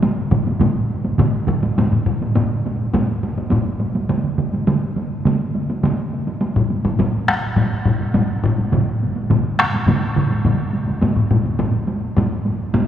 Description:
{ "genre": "japanese traditional, taiko drum ensemble", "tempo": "104 BPM", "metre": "4/4", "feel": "straight", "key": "none", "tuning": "none", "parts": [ { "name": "taiko ensemble", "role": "percussion", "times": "0.0-12.9 s", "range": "none", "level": "-21 LUFS", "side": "right 1 dB", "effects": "none" }, { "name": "solo taiko drums", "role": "percussion", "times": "0.3-10.6 s", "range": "none", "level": "-23 LUFS", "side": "right 3 dB", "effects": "none" }, { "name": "taiko ensemble", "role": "percussion", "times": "0.3-12.9 s", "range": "none", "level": "-19 LUFS", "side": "left 2 dB", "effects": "none" } ], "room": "wet cathedral reverb, RT60 4.9 s", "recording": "recorded in a church or concert hall", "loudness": "-16 LUFS", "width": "side -10 dB against mid", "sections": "0.0-1.8 A section; 1.8-12.9 B section", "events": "none", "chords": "none" }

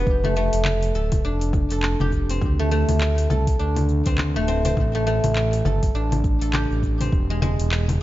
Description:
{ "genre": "organic downtempo", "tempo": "102 BPM", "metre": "4/4", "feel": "swing 60% on 16ths", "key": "A minor", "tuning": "A4 = 440 Hz", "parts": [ { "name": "guzheng", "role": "arpeggios", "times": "0.0-8.0 s", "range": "G#3 to A4", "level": "-24 LUFS", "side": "equal", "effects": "tape echo" }, { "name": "smooth gliding synth bass", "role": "bass", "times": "0.0-8.0 s", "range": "D1 to D2", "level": "-22 LUFS", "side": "equal", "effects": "sidechain pumping" }, { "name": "afro-pop drum kit", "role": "drums", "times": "0.1-8.0 s", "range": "congas, handclaps, hi-hat, shaker", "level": "-28 LUFS", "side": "left 2 dB", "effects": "none" }, { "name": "electronic kick drum", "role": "drums", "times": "0.1-7.3 s", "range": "none", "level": "-23 LUFS", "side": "equal", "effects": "none" } ], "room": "digital ambience", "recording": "nothing above 7.5 kHz", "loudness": "-19 LUFS", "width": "side -15 dB against mid", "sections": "0.0-8.0 A section", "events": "none", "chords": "0.1 F6; 2.4 D5; 4.8 Am7; 7.1 E7" }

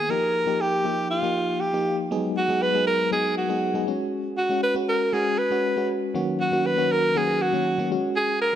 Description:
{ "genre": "pop", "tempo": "119 BPM", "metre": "4/4", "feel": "straight", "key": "G# dorian", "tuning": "A4 = 440 Hz", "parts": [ { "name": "breathy alto saxophone", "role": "melody", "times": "0.0-8.6 s", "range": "E#4 to B4", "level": "-23 LUFS", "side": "right 1 dB", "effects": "none" }, { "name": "FM electric piano with auto-pan", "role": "accompaniment", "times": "0.0-8.6 s", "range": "D#3 to G#4", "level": "-26 LUFS", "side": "left 2 dB", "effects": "none" } ], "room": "moderate plate reverb, RT60 2.7 s", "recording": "none", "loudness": "-21 LUFS", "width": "side -10 dB against mid", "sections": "0.0-2.1 A section; 2.1-8.6 B section", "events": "none", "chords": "0.1 D#add9; 2.1 G#m7; 3.9 C#sus4; 6.1 D#m7; 7.9 C#sus4" }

